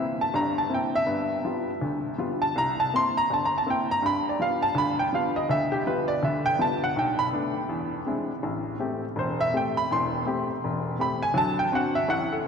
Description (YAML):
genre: solo jazz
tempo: 164 BPM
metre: 4/4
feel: swing 63% on 8ths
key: G mixolydian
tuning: A4 = 440 Hz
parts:
  - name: warm upright piano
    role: solo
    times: 0.0-12.4 s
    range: E1 to C6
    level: -24 LUFS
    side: equal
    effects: none
room: wet cathedral reverb, RT60 5.2 s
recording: recorded in a church or concert hall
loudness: -24 LUFS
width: side -6 dB against mid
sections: 0.0-12.5 A section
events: upright piano solo 0.0-12.5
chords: 0.0 C7; 1.1 G7; 2.5 C7; 4.0 G7; 7.0 Bm7; 7.7 Eaug7; 8.4 Am7; 11.4 D7